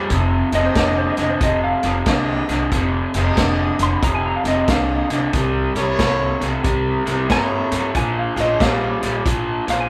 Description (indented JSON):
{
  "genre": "electric blues shuffle",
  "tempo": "92 BPM",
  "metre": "4/4",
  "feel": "swing 64% on 8ths",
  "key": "F minor",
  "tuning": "A4 = 441 Hz",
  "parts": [
    { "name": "raw garage guitar", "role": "riff", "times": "0.0-9.9 s", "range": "F2 to A3", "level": "-23 LUFS", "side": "equal", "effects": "overdrive" },
    { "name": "clear horn section", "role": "stabs", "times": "0.0-9.8 s", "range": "Db4 to Eb5", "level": "-29 LUFS", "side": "equal", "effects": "none" },
    { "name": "upright bass", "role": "bass", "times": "0.0-9.9 s", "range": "F1 to G2", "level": "-26 LUFS", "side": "equal", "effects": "none" },
    { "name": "vintage drum kit", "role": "drums", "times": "0.1-9.8 s", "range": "hi-hat, kick drum, snare drum", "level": "-25 LUFS", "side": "equal", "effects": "none" },
    { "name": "clean lap steel guitar", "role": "second line", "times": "0.6-9.9 s", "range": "C5 to C6", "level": "-25 LUFS", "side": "equal", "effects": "none" }
  ],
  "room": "moderate large studio reverb, RT60 0.8 s",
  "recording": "band playing live in one room",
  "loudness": "-19 LUFS",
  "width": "mono",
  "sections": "0.0-9.9 A section",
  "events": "electric slide guitar solo 0.0-9.9",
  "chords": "0.1 Fm9; 5.3 C7b9; 8.0 Bbm9"
}